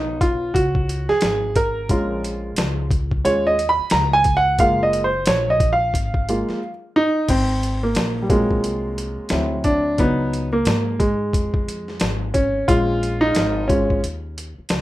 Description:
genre	hip hop, jazz-hop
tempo	89 BPM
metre	4/4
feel	swing 62% on 16ths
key	unclear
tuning	A4 = 439 Hz
part	dark grand piano	accompaniment	0.0-14.0 s	F#3 to B5	-19 LUFS	right 1 dB	plate reverb
part	upright bass	bass	0.0-14.8 s	F#1 to G#2	-26 LUFS	left 1 dB	none
part	boom bap sampler-style drum kit	drums	0.2-14.8 s	crash cymbal, hi-hat, kick drum, snare drum	-22 LUFS	equal	none
room	moderate small room reverb, RT60 0.6 s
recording	rough home demo mix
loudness	-17 LUFS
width	side -15 dB against mid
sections	0.0-7.3 A section; 7.3-14.8 B section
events	grand piano solo 0.0-7.3, 7.3-14.8; drums muted 6.6-7.3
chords	0.0 C#7sus4; 1.9 A#m7; 4.6 F#maj9; 7.3 G#13; 9.3 D9; 10.0 C#9sus4; 12.7 A#m7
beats	0.55 1.22 | 1.90 2.57 3.24 3.92 | 4.59 5.27 5.94 6.61 | 7.29 7.96 8.64 9.31 | 9.98 10.66 11.33 12.01 | 12.68 13.36 14.03 14.70

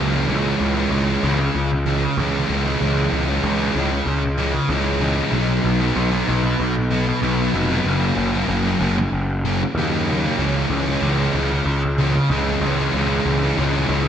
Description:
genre	post-rock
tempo	95 BPM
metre	4/4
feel	straight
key	unclear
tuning	A4 = 440 Hz
part	sludgy distorted guitar	riff	0.0-14.1 s	F#2 to D#4	-20 LUFS	equal	overdrive
part	fuzz picked electric bass	bass	0.0-14.1 s	E#1 to D#2	-21 LUFS	equal	overdrive
room	wet lush hall reverb, RT60 2.5 s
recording	big arena sound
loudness	-17 LUFS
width	side -9 dB against mid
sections	0.0-14.1 A section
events	none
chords	0.3 C#m; 5.3 B; 7.9 F#; 10.4 C#m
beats	| 0.28 0.91 1.54 2.18 | 2.81 3.44 4.07 4.70 | 5.33 5.96 6.60 7.23 | 7.86 8.50 9.13 9.76 | 10.39 11.03 11.66 12.29 | 12.93 13.56

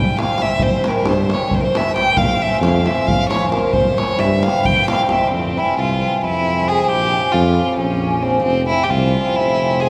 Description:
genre	balkan folk, Balkan wedding band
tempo	268 BPM (eighths)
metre	7/8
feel	straight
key	unclear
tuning	A4 = 440 Hz
part	rich violin	melody	0.0-9.9 s	C4 to G5	-21 LUFS	equal	none
part	cimbalom	accompaniment	0.0-9.9 s	C3 to F4	-23 LUFS	equal	none
part	mellow tuba	bass	0.0-9.9 s	F1 to G2	-23 LUFS	equal	none
part	davul	percussion	0.2-5.3 s	none	-24 LUFS	equal	none
room	wet cathedral reverb, RT60 5.7 s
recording	recorded in a church or concert hall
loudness	-17 LUFS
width	mono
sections	0.0-5.3 A section; 5.3-9.9 B section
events	none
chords	0.0 C; 2.2 Bbm; 3.7 C; 5.3 Fm; 6.9 Bbm; 8.4 Fm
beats	0.15 0.38 | 0.60 0.83 1.05 1.28 1.50 1.73 1.95 | 2.17 2.40 2.62 2.85 3.07 3.30 3.52 | 3.74 3.97 4.19 4.42 4.64 4.86 5.09 | 5.31 5.54 5.76 5.98 6.21 6.43 6.65 | 6.88 7.10 7.32 7.55 7.77 7.99 8.22 | 8.44 8.66 8.89 9.11 9.34 9.56 9.78

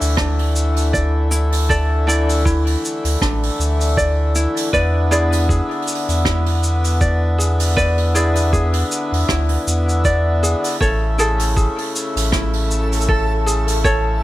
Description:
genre	folktronica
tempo	79 BPM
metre	4/4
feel	swing 56% on 16ths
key	unclear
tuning	A4 = 440 Hz
part	hand-pumped harmonium	sustained chords	0.0-14.2 s	C#3 to E4	-23 LUFS	left 2 dB	plate reverb
part	ukulele	arpeggios	0.0-14.2 s	D4 to D5	-22 LUFS	equal	ping-pong delay, plate reverb
part	warm sub bass	bass	0.0-14.2 s	A1 to E2	-18 LUFS	equal	none
part	jazz brush drum kit	drums	0.0-14.0 s	cabasa, hi-hat, rim click	-25 LUFS	right 2 dB	none
part	electronic kick drum	drums	0.2-14.0 s	none	-20 LUFS	equal	none
part	backwards swelling texture	texture	11.8-14.2 s	A4	-29 LUFS	right 2 dB	built-in reverb, plate reverb
room	light reverb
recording	none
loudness	-15 LUFS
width	side -16 dB against mid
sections	0.0-14.2 A section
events	none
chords	0.0 Dsus2; 4.7 E7; 10.8 Amaj7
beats	0.18 0.94 | 1.70 2.46 3.22 3.98 | 4.74 5.50 6.25 7.01 | 7.77 8.53 9.29 10.05 | 10.81 11.57 12.33 13.09 | 13.85

